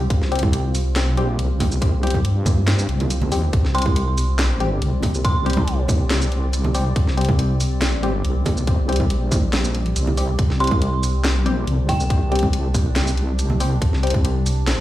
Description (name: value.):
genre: deep dubstep.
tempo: 140 BPM.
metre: 4/4.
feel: half-time.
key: unclear.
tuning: A4 = 440 Hz.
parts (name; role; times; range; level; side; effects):
deep dark ambient pad; sustained chords; 0.0-14.8 s; G3 to D5; -30 LUFS; equal; chorus, built-in reverb.
deep soft wobble bass; bass; 0.0-14.8 s; Bb1 to G2; -20 LUFS; equal; chorus.
electronic kick drum; drums; 0.1-14.2 s; none; -20 LUFS; equal; studio reverb.
garage drum kit; drums; 0.1-14.8 s; handclaps, hi-hat, shaker, snare drum; -26 LUFS; equal; studio reverb.
percussive organ stab; stabs; 0.3-14.1 s; G3 to G4; -28 LUFS; left 3 dB; chorus, phaser, dub echo.
congas; percussion; 0.4-14.2 s; none; -28 LUFS; right 2 dB; dub echo.
dark detuned synth bell; melody; 3.7-5.7, 10.6-12.3 s; G5 to C6; -28 LUFS; right 2 dB; chorus, vintage 12-bit sampler grit, dub echo.
room: light reverb.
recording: played on a big sound system in a bare room, large studio reverb.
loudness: -17 LUFS.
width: side -14 dB against mid.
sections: 0.0-14.8 A section.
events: none.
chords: 0.0 C5.